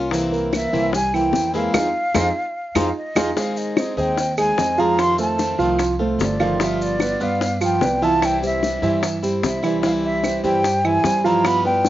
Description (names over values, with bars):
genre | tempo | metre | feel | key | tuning
latin, Cuban son and guajira | 148 BPM | 4/4 | straight | F minor | A4 = 440 Hz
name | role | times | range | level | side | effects
picked plugged-in swing-style acoustic guitar | accompaniment | 0.0-11.9 s | C3 to Ab4 | -26 LUFS | left 4 dB | none
dark baby grand piano | arpeggios | 0.0-11.9 s | E3 to Ab5 | -21 LUFS | right 4 dB | slapback echo
upright bass | bass | 0.0-11.9 s | G1 to G2 | -28 LUFS | left 1 dB | none
bongos | percussion | 0.1-11.9 s | none | -24 LUFS | left 5 dB | slapback echo
maracas | percussion | 0.1-11.9 s | none | -35 LUFS | left 3 dB | none
breathy concert flute | melody | 0.5-11.9 s | D5 to C6 | -22 LUFS | equal | none
claves | percussion | 0.5-11.6 s | none | -30 LUFS | right 4 dB | none
room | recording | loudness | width
little or no reverb | recorded outdoors, with no room sound, nothing above 7.5 kHz | -17 LUFS | side -13 dB against mid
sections
0.0-3.4 A section; 3.4-11.9 B section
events
band accent 1.7-3.4; drum fill 3.2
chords
0.1 C7; 1.7 Fm7; 3.4 Ab; 5.0 F7; 6.6 G7; 8.2 C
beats
| 0.12 0.53 0.93 1.34 | 1.74 2.15 2.56 2.96 | 3.37 3.77 4.17 4.58 | 4.99 5.39 5.79 6.20 | 6.60 7.01 7.41 7.81 | 8.22 8.62 9.03 9.43 | 9.83 10.24 10.64 11.04 | 11.45 11.85